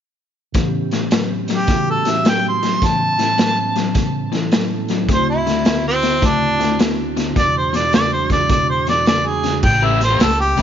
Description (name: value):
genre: electric blues shuffle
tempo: 106 BPM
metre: 4/4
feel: swing 66% on 8ths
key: A mixolydian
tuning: A4 = 440 Hz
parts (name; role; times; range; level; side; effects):
- mellow tonewheel organ; accompaniment; 0.5-9.6 s; D2 to A4; -24 LUFS; right 9 dB; slow rotary speaker, chorus vibrato
- crunchy overdriven guitar; riff; 0.5-10.6 s; E2 to B4; -22 LUFS; left 12 dB; none
- raw garage drum kit; drums; 0.5-10.6 s; crash cymbal, hi-hat, kick drum, snare drum; -20 LUFS; equal; none
- mellow harmonica; melody; 1.5-10.6 s; C4 to C6; -18 LUFS; right 1 dB; overdrive
- upright bass; bass; 9.6-10.6 s; A1 to C#2; -18 LUFS; right 1 dB; none
room: light reverb, small room ambience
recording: 1960s-style stereo with parts hard left and right, nothing above 7.5 kHz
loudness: -14 LUFS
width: side -9 dB against mid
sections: 0.6-9.6 A section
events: none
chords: 0.6 A7; 5.1 D7; 7.4 E7; 9.6 A9